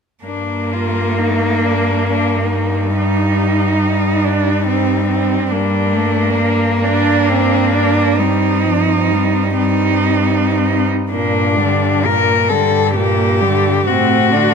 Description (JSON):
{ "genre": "classical, lyrical piece for cello ensemble", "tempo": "37-48 BPM (dotted quarters)", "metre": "6/8", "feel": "rubato", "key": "G minor", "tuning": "A4 = 440 Hz", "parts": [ { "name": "rich cello", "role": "second line", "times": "0.2-14.5 s", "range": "G3 to Eb4", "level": "-18 LUFS", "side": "right 8 dB", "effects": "none" }, { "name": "rich cello", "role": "accompaniment", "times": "0.2-14.5 s", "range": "Bb2 to Bb3", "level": "-20 LUFS", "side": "left 3 dB", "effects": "none" }, { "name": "clear cello", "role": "bass", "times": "0.2-14.5 s", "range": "G2 to A2", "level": "-19 LUFS", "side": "right 2 dB", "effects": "none" }, { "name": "rich cello", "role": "melody", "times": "0.3-14.5 s", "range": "C4 to Bb4", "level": "-18 LUFS", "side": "left 8 dB", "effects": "none" } ], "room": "moderate recital hall reverb, RT60 1.7 s", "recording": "close, detailed microphones", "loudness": "-13 LUFS", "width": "side -6 dB against mid", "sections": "0.2-11.1 A section; 11.1-14.5 B section", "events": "none", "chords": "0.2 Gm; 3.0 Cm/G; 5.5 Gm; 8.2 Cm/G; 11.1 Gm; 13.9 D7/A" }